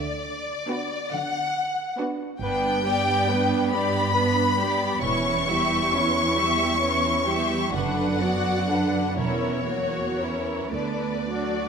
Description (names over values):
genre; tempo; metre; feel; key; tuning
classical, slow romantic movement for string orchestra; 36-48 BPM (dotted quarters); 6/8; rubato; B minor; A4 = 440 Hz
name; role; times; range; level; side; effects
rich studio violin section; melody; 0.0-11.7 s; C#5 to C#6; -25 LUFS; left 3 dB; none
rich studio cello section; bass; 0.0-11.7 s; D2 to D3; -29 LUFS; right 4 dB; none
warm studio double bass section; bass; 0.0-11.7 s; E1 to D2; -34 LUFS; right 4 dB; none
warm studio violin section; second line; 0.7-11.7 s; D4 to E5; -29 LUFS; left 1 dB; none
rich studio viola section; accompaniment; 0.7-11.7 s; D3 to E4; -28 LUFS; right 3 dB; none
room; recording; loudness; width
moderate concert hall reverb, RT60 2.0 s; minimal, uncompressed stereo recording; -22 LUFS; side -6 dB against mid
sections
0.0-11.7 A section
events
none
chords
0.0 Bm/D; 2.4 G; 5.0 C#dim/E; 7.7 Bm/F#; 9.2 F#7/E; 10.7 Bm/D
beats
1.11 | 2.42 3.71 | 5.03 6.36 | 7.73 9.19 | 10.74